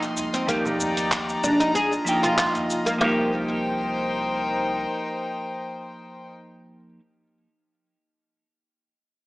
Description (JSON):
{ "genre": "organic downtempo", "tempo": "95 BPM", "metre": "4/4", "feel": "swing 54% on 16ths", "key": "C minor", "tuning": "A4 = 440 Hz", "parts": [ { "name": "clean electric guitar", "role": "accompaniment", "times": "0.0-7.0 s", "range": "F3 to G5", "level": "-28 LUFS", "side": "right 1 dB", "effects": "sidechain pumping, digital delay" }, { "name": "rich chamber string section", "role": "sustained chords", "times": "0.0-6.3 s", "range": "Eb4 to C6", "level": "-28 LUFS", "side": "left 2 dB", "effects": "sidechain pumping" }, { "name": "dusty soul sampler-style drum kit", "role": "drums", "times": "0.0-3.0 s", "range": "cabasa, congas, handclaps, hi-hat", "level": "-28 LUFS", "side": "equal", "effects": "none" }, { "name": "warm sub bass", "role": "bass", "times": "0.2-4.9 s", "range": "F1 to Eb2", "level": "-41 LUFS", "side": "equal", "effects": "none" }, { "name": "udu", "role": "percussion", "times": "0.2-2.7 s", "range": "none", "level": "-48 LUFS", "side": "right 1 dB", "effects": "none" }, { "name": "oud", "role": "arpeggios", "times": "0.3-3.3 s", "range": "Bb3 to Ab4", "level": "-25 LUFS", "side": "equal", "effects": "digital delay" }, { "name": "organic electronic drum kit", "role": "drums", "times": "0.5-3.2 s", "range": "kick drum, snare drum", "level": "-30 LUFS", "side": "equal", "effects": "overdrive" } ], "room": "moderate echo chamber reverb, RT60 1.6 s, digital ambience", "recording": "small speaker sound", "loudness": "-21 LUFS", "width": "side -20 dB against mid", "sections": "0.0-3.0 A section; 3.0-5.5 B section", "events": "none", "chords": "0.5 Ebmaj7; 1.8 Bb7sus4; 3.0 Cm7" }